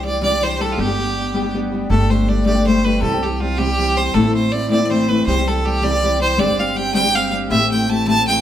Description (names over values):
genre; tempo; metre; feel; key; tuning
celtic folk, Celtic jig; 107 BPM (dotted quarters); 6/8; straight; G major; A4 = 441 Hz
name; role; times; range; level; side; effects
clear fiddle; melody; 0.0-8.4 s; F4 to A5; -19 LUFS; right 1 dB; none
fingerpicked steel-string acoustic guitar; accompaniment; 0.0-8.4 s; G2 to G4; -19 LUFS; left 2 dB; none
upright bass; bass; 0.0-8.4 s; G1 to C2; -23 LUFS; right 1 dB; none
room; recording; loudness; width
moderate stone room reverb, RT60 1.3 s; band playing live in one room; -15 LUFS; side -10 dB against mid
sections
0.0-1.9 A section; 1.9-8.4 A section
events
none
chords
0.0 Cadd9; 0.8 G; 1.9 Gsus2; 3.0 C; 4.1 Am; 5.3 C; 6.4 Gsus4; 7.5 Am7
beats
0.21 | 0.78 1.34 | 1.90 2.46 | 3.02 3.58 | 4.14 4.70 | 5.26 5.82 | 6.38 6.94 | 7.50 8.06